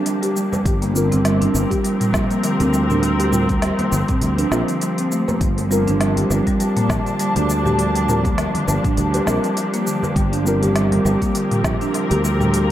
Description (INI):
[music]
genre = organic downtempo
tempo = 101 BPM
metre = 4/4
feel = swing 56% on 16ths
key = G minor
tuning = A4 = 440 Hz
[part]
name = muted studio string section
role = sustained chords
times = 0.0-12.7 s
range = F3 to A5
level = -24 LUFS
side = left 1 dB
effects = sidechain pumping
[part]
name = buzzing marimba with soft mallets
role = arpeggios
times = 0.0-12.7 s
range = D3 to G4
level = -21 LUFS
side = right 1 dB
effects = analog delay
[part]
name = quartz singing bowl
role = texture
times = 0.0-12.7 s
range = none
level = barely audible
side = none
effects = none
[part]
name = organic electronic drum kit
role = drums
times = 0.1-12.7 s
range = hi-hat, shaker, snare drum, toms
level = -26 LUFS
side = equal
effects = overdrive, dub echo
[part]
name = congas and bongos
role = percussion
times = 0.5-12.5 s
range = none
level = -32 LUFS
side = right 1 dB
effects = none
[part]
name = sustaining fretless electric bass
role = bass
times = 0.7-12.7 s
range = G1 to D2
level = -21 LUFS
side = equal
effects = sidechain pumping
[part]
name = electronic kick drum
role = drums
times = 0.7-11.8 s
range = none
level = -22 LUFS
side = equal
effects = none
[part]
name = muted felt-like synth keys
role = accompaniment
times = 0.9-12.7 s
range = G3 to Bb4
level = -25 LUFS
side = equal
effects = chorus, sidechain pumping, dub echo
[sound]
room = moderate spring reverb, RT60 2.1 s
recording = echo-heavy mix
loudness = -16 LUFS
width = side -12 dB against mid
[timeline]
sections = 0.0-12.7 A section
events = none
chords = 0.0 Gm9; 10.2 C7sus4/G